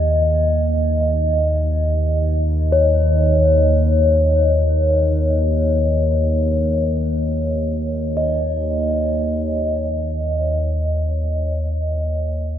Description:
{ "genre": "world meditative, free-time meditation music", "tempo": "free time", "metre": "none", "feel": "none", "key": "unclear", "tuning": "A4 = 440 Hz", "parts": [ { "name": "deep rumbling drone", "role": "drone", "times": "0.0-12.6 s", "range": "Eb2", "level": "-18 LUFS", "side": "equal", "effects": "built-in reverb, lush chorus" }, { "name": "bronze singing bowl", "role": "texture", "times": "0.0-12.6 s", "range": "Db5 to Eb5", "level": "-20 LUFS", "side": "left 1 dB", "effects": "none" } ], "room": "wet huge ambient reverb, RT60 8.5 s", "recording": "dreamy mix soaked in reverb", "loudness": "-16 LUFS", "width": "side -10 dB against mid", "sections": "0.0-12.6 A section", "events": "none", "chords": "none", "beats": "free time" }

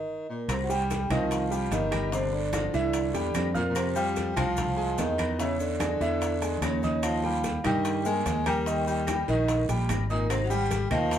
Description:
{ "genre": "Afro-Cuban jazz", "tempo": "147 BPM", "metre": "4/4", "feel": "straight", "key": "C minor", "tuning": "A4 = 444 Hz", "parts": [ { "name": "vibraphone with medium mallets", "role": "melody", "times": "0.0-11.2 s", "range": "Bb4 to Ab5", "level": "-32 LUFS", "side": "right 1 dB", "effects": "none" }, { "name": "warm baritone saxophone", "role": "second line", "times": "0.0-11.2 s", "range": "Bb2 to Ab3", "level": "-32 LUFS", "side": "left 3 dB", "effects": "none" }, { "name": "fingered electric bass", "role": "bass", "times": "0.5-11.2 s", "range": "G1 to G2", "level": "-30 LUFS", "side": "equal", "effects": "none" }, { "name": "bongos", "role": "percussion", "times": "0.5-11.2 s", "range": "none", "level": "-40 LUFS", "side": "left 4 dB", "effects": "none" }, { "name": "claves", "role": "percussion", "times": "0.5-11.1 s", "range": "none", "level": "-42 LUFS", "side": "left 3 dB", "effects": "none" }, { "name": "congas", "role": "percussion", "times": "0.5-11.2 s", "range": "none", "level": "-37 LUFS", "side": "right 1 dB", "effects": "none" }, { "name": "guiro", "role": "percussion", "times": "0.5-11.2 s", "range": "none", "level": "-44 LUFS", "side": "right 3 dB", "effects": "none" }, { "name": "maracas", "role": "percussion", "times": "0.5-11.2 s", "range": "none", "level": "-44 LUFS", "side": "left 5 dB", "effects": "none" }, { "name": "timbales", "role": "percussion", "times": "0.5-11.2 s", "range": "none", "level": "-38 LUFS", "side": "right 4 dB", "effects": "none" }, { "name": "clear grand piano", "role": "accompaniment", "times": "0.7-11.2 s", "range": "D3 to F6", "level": "-31 LUFS", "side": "right 1 dB", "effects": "none" } ], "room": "wet small room reverb, RT60 0.6 s", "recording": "band playing live in one room", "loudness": "-25 LUFS", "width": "side -10 dB against mid", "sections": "0.5-11.2 A section", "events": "stop 0.0-0.5", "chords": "0.5 Cm; 2.1 G5; 2.9 C; 3.8 Fm7; 5.4 E6; 7.0 Eb; 10.3 Ab5", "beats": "0.08 | 0.49 0.90 1.31 1.72 | 2.13 2.54 2.94 3.35 | 3.76 4.17 4.58 4.99 | 5.40 5.81 6.21 6.62 | 7.03 7.44 7.85 8.26 | 8.67 9.08 9.49 9.89 | 10.30 10.71 11.12" }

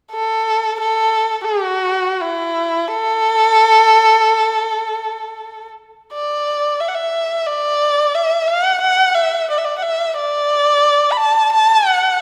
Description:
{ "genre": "chinese traditional", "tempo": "70-90 BPM", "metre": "2/4", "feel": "straight", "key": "unclear", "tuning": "A4 = 442 Hz", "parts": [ { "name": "warm erhu", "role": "solo", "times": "0.1-12.2 s", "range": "E4 to B5", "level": "-16 LUFS", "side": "equal", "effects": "none" } ], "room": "moderate concert hall reverb, RT60 1.9 s", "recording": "none", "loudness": "-16 LUFS", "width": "mono", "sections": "0.0-6.1 A section; 6.1-12.2 B section", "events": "none", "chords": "none", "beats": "0.29 | 1.13 1.97 | 2.81 3.65 | 4.51 5.36 | 6.13 6.81 | 7.48 8.15 | 8.83 9.50 | 10.17 10.85 | 11.53" }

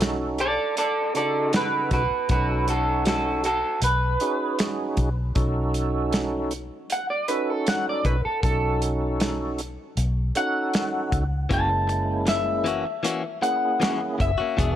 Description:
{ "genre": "straight-eighth soul blues", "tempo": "78 BPM", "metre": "4/4", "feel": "straight", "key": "B mixolydian", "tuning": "A4 = 441 Hz", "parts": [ { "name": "tonewheel organ", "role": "accompaniment", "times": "0.0-14.8 s", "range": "C#3 to A4", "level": "-29 LUFS", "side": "right 2 dB", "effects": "slow rotary speaker, overdrive, chorus vibrato" }, { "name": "vintage muted fingered electric bass", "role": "bass", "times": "0.0-14.8 s", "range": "E1 to C#2", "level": "-26 LUFS", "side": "equal", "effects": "none" }, { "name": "warm soul drum kit", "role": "drums", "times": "0.0-14.8 s", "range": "hi-hat, kick drum, snare drum", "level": "-27 LUFS", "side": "equal", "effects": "none" }, { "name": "electric guitar through a small old amp", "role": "melody", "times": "0.4-14.8 s", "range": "F#4 to A5", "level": "-25 LUFS", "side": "equal", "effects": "lush chorus" }, { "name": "direct-recorded clean electric guitar", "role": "stabs", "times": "11.5-14.8 s", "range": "E3 to G#4", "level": "-29 LUFS", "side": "left 4 dB", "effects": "none" } ], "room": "studio reverb", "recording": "none", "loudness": "-22 LUFS", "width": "side -11 dB against mid", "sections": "0.0-14.8 A section", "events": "none", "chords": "0.0 B7; 11.5 F#7", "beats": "0.00 0.76 1.53 | 2.29 3.06 3.83 4.59 | 5.36 6.13 6.89 7.66 | 8.43 9.20 9.97 10.73 | 11.50 12.27 13.04 13.81 | 14.58" }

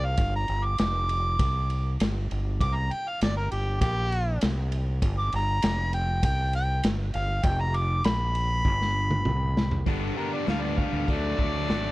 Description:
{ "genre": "blues rock power trio and southern rock", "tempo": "99 BPM", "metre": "4/4", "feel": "straight", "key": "unclear", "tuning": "A4 = 439 Hz", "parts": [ { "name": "warm harmonica", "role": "melody", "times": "0.0-11.9 s", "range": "G4 to D6", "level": "-30 LUFS", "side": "equal", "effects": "overdrive" }, { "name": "growling fingered electric bass", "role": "bass", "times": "0.0-11.9 s", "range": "F1 to D2", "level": "-27 LUFS", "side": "equal", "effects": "overdrive" }, { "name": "raw garage drum kit", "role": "drums", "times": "0.2-11.8 s", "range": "hi-hat, kick drum, ride cymbal, snare drum, toms", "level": "-29 LUFS", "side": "equal", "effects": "none" }, { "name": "sludgy distorted guitar", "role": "riff", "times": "9.9-11.9 s", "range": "G2 to D4", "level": "-29 LUFS", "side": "left 1 dB", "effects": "overdrive" } ], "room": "little or no reverb", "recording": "dry, close 1970s-style studio recording", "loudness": "-24 LUFS", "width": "side -18 dB against mid", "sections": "0.0-9.9 A section; 9.9-11.9 B section", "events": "harmonica solo 0.0-9.9; drum fill 8.7-9.9", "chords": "0.0 Fsus24; 9.9 G; 11.1 D", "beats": "| 0.18 0.79 1.39 2.00 | 2.60 3.21 3.82 4.42 | 5.03 5.63 6.24 6.84 | 7.45 8.05 8.66 9.26 | 9.87 10.47 11.08 11.69" }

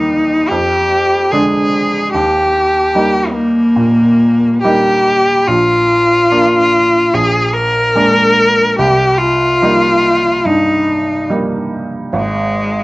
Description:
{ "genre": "classical, romantic duo for cello and grand piano", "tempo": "72 BPM", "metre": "4/4", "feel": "rubato", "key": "unclear", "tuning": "A4 = 440 Hz", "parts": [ { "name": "clear cello", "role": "melody", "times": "0.0-12.8 s", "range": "Ab3 to Bb4", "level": "-11 LUFS", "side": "left 1 dB", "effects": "none" }, { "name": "clear baby grand piano", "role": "accompaniment", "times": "0.0-12.8 s", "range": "Ab1 to Eb4", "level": "-17 LUFS", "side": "right 2 dB", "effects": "none" } ], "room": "light reverb", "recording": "worn, warbling old tape, cassette tape, warbly pitch drift, nothing above 7.9 kHz", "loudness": "-10 LUFS", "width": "side -20 dB against mid", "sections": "0.0-12.8 A section", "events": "none", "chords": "0.0 Eb; 0.5 Ddim/F; 2.1 Eb; 5.5 Bb; 7.1 Bb7; 8.8 Cm7; 12.1 N.C.", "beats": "0.50 1.31 | 2.13 2.94 3.76 4.64 | 5.48 6.31 7.14 7.96 | 8.79 9.62 10.45 11.30 | 12.14" }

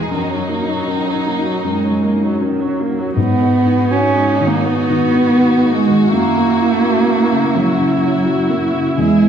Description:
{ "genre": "neoclassical piano and strings", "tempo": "77-85 BPM", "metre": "4/4", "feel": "rubato", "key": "G# minor", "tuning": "A4 = 441 Hz", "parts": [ { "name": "rich chamber violin section", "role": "melody", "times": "0.0-9.3 s", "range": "D#4 to G#4", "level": "-24 LUFS", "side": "left 4 dB", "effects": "none" }, { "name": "dark cello", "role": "second line", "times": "0.0-9.3 s", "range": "F#3 to C#4", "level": "-16 LUFS", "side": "right 3 dB", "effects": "none" }, { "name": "felt-muted upright piano", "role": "accompaniment", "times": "0.0-9.3 s", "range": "E2 to G#4", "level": "-18 LUFS", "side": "left 3 dB", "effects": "none" }, { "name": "warm viola", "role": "accompaniment", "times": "0.0-9.3 s", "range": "D#3 to E4", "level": "-22 LUFS", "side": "right 2 dB", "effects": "none" } ], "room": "wet recital hall reverb, RT60 1.4 s", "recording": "recorded in a church or concert hall", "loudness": "-13 LUFS", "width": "side -8 dB against mid", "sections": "0.0-3.2 A section; 3.2-9.3 A section", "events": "none", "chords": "0.1 D#m/F#; 3.2 G#m7; 6.1 F#7", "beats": "| 0.09 0.87 1.64 2.40 | 3.17 3.91 4.64 5.38 | 6.11 6.83 7.55 8.26 | 8.98" }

